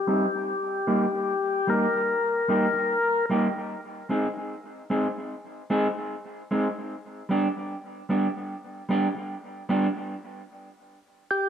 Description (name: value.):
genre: reggae.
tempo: 75 BPM.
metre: 4/4.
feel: swing 60% on 16ths.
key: unclear.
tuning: A4 = 440 Hz.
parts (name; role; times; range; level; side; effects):
percussive tonewheel organ; melody; 0.0-3.3, 11.3-11.5 s; G4 to Bb4; -24 LUFS; left 3 dB; slow rotary speaker, low-pass filter, dub echo.
mellow electric guitar; accompaniment; 0.1-9.9 s; G3 to Ab4; -26 LUFS; right 1 dB; low-pass filter, dub echo.
room: moderate spring reverb, RT60 1.4 s, digital ambience.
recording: echo-heavy mix.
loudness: -24 LUFS.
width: side -8 dB against mid.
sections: 0.0-10.1 A section; 10.1-11.5 B section.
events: filter sweep 0.0-10.1; break 10.1-11.5.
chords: 0.5 Eb; 3.7 Ab; 6.9 G; 10.1 N.C..